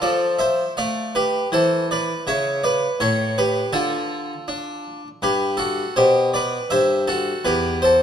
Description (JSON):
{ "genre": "classical, baroque-style suite movement for harpsichord", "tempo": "80 BPM", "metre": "4/4", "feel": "rubato", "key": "unclear", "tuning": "A4 = 440 Hz", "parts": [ { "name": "harpsichord", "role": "solo", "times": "0.0-8.0 s", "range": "E2 to F5", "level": "-18 LUFS", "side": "equal", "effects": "none" } ], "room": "moderate recital hall reverb, RT60 1.7 s", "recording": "close, detailed microphones", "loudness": "-18 LUFS", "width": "side -8 dB against mid", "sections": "0.0-8.0 A section", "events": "none", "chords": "0.0 Dm; 2.3 A7/C#; 3.7 Dm; 5.2 G; 6.7 C/G", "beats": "0.02 0.77 1.52 | 2.26 2.99 3.74 4.48 | 5.22 5.96 6.71 7.46" }